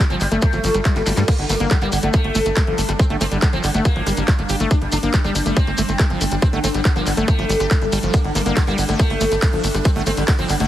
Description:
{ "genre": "psychedelic trance", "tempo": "140 BPM", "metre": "4/4", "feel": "straight", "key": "G minor", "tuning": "A4 = 444 Hz", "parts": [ { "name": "sitar", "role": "melody", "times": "0.0-10.6 s", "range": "D3 to D4", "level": "-24 LUFS", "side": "equal", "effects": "phaser, sidechain pumping, dub echo" }, { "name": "evolving wavetable pad", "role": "sustained chords", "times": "0.1-10.7 s", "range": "G3 to F4", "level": "-28 LUFS", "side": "equal", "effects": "ensemble chorus, built-in reverb, sidechain pumping" }, { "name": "liquid acid bass", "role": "riff", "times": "0.0-10.7 s", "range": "F3 to G4", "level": "-25 LUFS", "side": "equal", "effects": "chorus, auto-pan, sidechain pumping, dub echo" }, { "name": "shekere", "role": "percussion", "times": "0.0-10.7 s", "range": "none", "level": "-30 LUFS", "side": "left 1 dB", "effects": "none" }, { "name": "tight sequencer bass", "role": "bass", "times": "0.1-10.7 s", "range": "G1 to G2", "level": "-22 LUFS", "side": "equal", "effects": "none" }, { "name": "drum and bass drum kit", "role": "drums", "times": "0.1-10.7 s", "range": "crash cymbal, handclaps, hi-hat, ride cymbal, rim click, snare drum", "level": "-27 LUFS", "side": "equal", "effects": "overdrive" }, { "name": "electronic kick drum", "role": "drums", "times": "0.4-10.4 s", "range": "none", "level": "-16 LUFS", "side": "equal", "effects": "overdrive" } ], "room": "little or no reverb", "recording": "heavily compressed radio sound, multiband compression", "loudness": "-16 LUFS", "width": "side -12 dB against mid", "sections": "0.0-10.7 A section", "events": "drum fill 1.0-1.3", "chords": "0.0 G5", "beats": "0.42 0.85 | 1.28 1.71 2.14 2.57 | 3.00 3.42 3.85 4.28 | 4.71 5.14 5.57 6.00 | 6.42 6.85 7.28 7.71 | 8.14 8.57 8.99 9.42 | 9.85 10.28" }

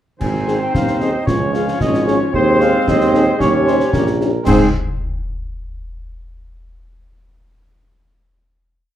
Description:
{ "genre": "military-style march for wind band", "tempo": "113 BPM", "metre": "2/4", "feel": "straight", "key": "Ab major", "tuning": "A4 = 440 Hz", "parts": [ { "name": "dark cornet", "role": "melody", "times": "0.2-4.7 s", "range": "Ab4 to Ab5", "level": "-22 LUFS", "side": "equal", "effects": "none" }, { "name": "warm woodwind section", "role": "second line", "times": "0.2-4.7 s", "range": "Eb4 to Db5", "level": "-22 LUFS", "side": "left 1 dB", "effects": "none" }, { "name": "warm trombone section", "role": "sustained chords", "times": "0.2-4.7 s", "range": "Eb3 to Db4", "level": "-21 LUFS", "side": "right 2 dB", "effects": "none" }, { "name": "clear tuba", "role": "bass", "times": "0.2-4.7 s", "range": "Ab1 to Ab2", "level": "-18 LUFS", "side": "right 2 dB", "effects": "none" }, { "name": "clash cymbals, concert bass drum and concert snare drum", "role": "drums", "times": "0.2-4.8 s", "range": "none", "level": "-22 LUFS", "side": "left 1 dB", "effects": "none" }, { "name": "warm French horn section", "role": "accompaniment", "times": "0.5-4.7 s", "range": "C4 to Ab4", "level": "-21 LUFS", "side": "left 3 dB", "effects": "none" } ], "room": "light reverb", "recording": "dark, warm production", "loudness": "-13 LUFS", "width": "side -11 dB against mid", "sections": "0.2-4.5 A section; 4.5-5.5 final chord", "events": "none", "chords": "0.2 Ab; 1.3 Db; 2.3 Ab/Eb; 3.4 Eb7; 4.5 Ab", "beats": "| 0.20 0.73 | 1.27 1.80 | 2.33 2.87 | 3.40 3.93 | 4.46" }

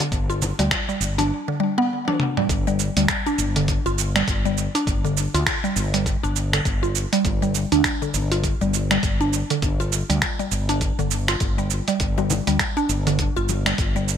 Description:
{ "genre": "organic downtempo", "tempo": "101 BPM", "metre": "4/4", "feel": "swing 60% on 16ths", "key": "unclear", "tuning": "A4 = 439 Hz", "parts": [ { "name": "mallet-like synth pluck", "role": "arpeggios", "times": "0.0-14.1 s", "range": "D3 to F4", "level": "-24 LUFS", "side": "equal", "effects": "chorus, phaser, ping-pong delay" }, { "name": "dusty soul sampler-style drum kit", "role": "drums", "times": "0.0-14.2 s", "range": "cabasa, finger snaps, hi-hat, toms", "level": "-25 LUFS", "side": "right 2 dB", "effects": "overdrive" }, { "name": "bongos and congas", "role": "percussion", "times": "0.0-1.3, 12.2-13.6 s", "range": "none", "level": "-30 LUFS", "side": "left 5 dB", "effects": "none" }, { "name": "fretless electric bass", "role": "bass", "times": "0.1-14.2 s", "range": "G1 to D2", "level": "-24 LUFS", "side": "equal", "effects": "none" }, { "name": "electronic kick drum", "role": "drums", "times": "0.1-13.9 s", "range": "none", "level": "-26 LUFS", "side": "equal", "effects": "overdrive" } ], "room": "light reverb, digital ambience", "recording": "bright 1980s-style digital production", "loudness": "-19 LUFS", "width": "side -8 dB against mid", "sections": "0.0-2.5 A section; 2.5-14.2 B section", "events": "drum fill 2.0-2.5", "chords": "0.0 N.C.; 2.5 G5", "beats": "| 0.12 0.71 1.31 1.90 | 2.50 3.09 3.68 4.28 | 4.87 5.47 6.06 6.65 | 7.25 7.84 8.44 9.03 | 9.62 10.22 10.81 11.41 | 12.00 12.60 13.19 13.78" }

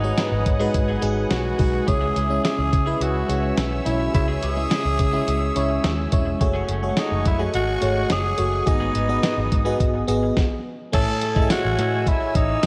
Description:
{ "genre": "1980s-style pop", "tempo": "106 BPM", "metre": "4/4", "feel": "straight", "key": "unclear", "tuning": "A4 = 439 Hz", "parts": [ { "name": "growling tenor saxophone", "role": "melody", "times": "0.0-12.7 s", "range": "D#4 to A4", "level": "-28 LUFS", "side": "equal", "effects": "digital delay, slapback echo" }, { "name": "FM electric piano", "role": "accompaniment", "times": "0.0-12.7 s", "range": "G#2 to G#5", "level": "-27 LUFS", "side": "equal", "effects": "chorus, phaser, slapback echo" }, { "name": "sweeping resonant pad", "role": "sustained chords", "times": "0.0-12.7 s", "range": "A3 to E6", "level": "-35 LUFS", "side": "equal", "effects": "chorus" }, { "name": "twelve-string electric guitar", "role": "riff", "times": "0.0-12.7 s", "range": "E3 to G#4", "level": "-39 LUFS", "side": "equal", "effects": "none" }, { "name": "vintage muted picked electric bass", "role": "bass", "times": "0.0-12.7 s", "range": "E1 to C#3", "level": "-27 LUFS", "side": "equal", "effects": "none" }, { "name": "clean 12-bit digital drum machine", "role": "drums", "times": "0.2-12.7 s", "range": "crash cymbal, hi-hat, kick drum, snare drum, tambourine", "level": "-26 LUFS", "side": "equal", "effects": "none" }, { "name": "mellow horn section", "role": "stabs", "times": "10.9-12.7 s", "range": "A3 to G#5", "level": "-37 LUFS", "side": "equal", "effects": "digital delay, slapback echo" } ], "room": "moderate concert hall reverb, RT60 2.4 s", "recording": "big arena sound", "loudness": "-21 LUFS", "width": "mono", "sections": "0.0-10.9 A section; 10.9-12.7 B section", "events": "stop 10.4-10.9", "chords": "0.0 G#m7; 1.9 C#m; 6.4 F#madd9; 8.7 G#m7; 10.9 Amaj7", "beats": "0.18 0.75 1.31 | 1.88 2.44 3.01 3.58 | 4.14 4.71 5.28 5.84 | 6.41 6.97 7.54 8.11 | 8.67 9.24 9.80 10.37 | 10.94 11.50 12.07 12.63" }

